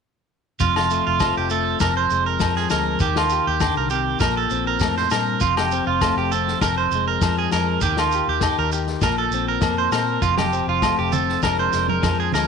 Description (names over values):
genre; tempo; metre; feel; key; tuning
highlife guitar band; 100 BPM; 4/4; swing 53% on 16ths; unclear; A4 = 440 Hz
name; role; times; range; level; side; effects
clean electric guitar; accompaniment; 0.6-12.5 s; F2 to Bb4; -26 LUFS; left 11 dB; none
electric guitar at the edge of break-up; arpeggios; 0.6-12.5 s; F4 to C5; -22 LUFS; right 9 dB; tape echo
vintage muted fingered electric bass; bass; 0.6-12.5 s; F1 to Bb2; -27 LUFS; equal; none
vintage drum kit; drums; 0.6-12.5 s; kick drum, snare drum; -27 LUFS; left 4 dB; none
shekere; percussion; 0.6-12.5 s; none; -30 LUFS; right 4 dB; none
agogo bells; percussion; 0.8-12.5 s; none; -27 LUFS; left 12 dB; none
congas; percussion; 10.4-12.5 s; none; -28 LUFS; right 8 dB; none
room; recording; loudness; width
moderate echo chamber reverb, RT60 1.7 s; 1960s-style stereo with parts hard left and right; -18 LUFS; side -6 dB against mid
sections
0.6-12.5 A section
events
none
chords
0.6 F; 1.8 Bb7/F; 3.0 Ebadd9; 4.2 Bbsus2; 5.4 Fadd9; 6.6 Bb5/F; 7.8 Ebadd9; 9.0 Bbsus2; 10.2 Fadd9; 11.4 Bb7/F